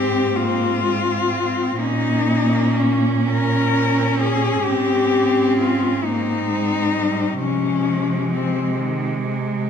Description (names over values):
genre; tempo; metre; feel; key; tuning
classical, lyrical piece for cello ensemble; 39-45 BPM (dotted quarters); 6/8; rubato; Ab major; A4 = 439 Hz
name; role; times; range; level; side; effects
warm cello; melody; 0.0-8.8 s; C4 to Bb4; -21 LUFS; left 5 dB; none
rich cello; second line; 0.0-9.7 s; Ab3 to Db4; -24 LUFS; right 6 dB; none
rich cello; accompaniment; 0.0-9.7 s; Eb3 to Db4; -24 LUFS; left 3 dB; none
warm cello; bass; 0.0-9.7 s; Ab2 to C3; -24 LUFS; right 2 dB; none
room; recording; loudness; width
wet recital hall reverb, RT60 1.4 s; minimal, uncompressed stereo recording; -17 LUFS; side -7 dB against mid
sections
0.0-9.7 A section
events
none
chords
0.0 Ab; 1.8 Eb5/Bb; 4.7 Ab; 7.4 Ab/C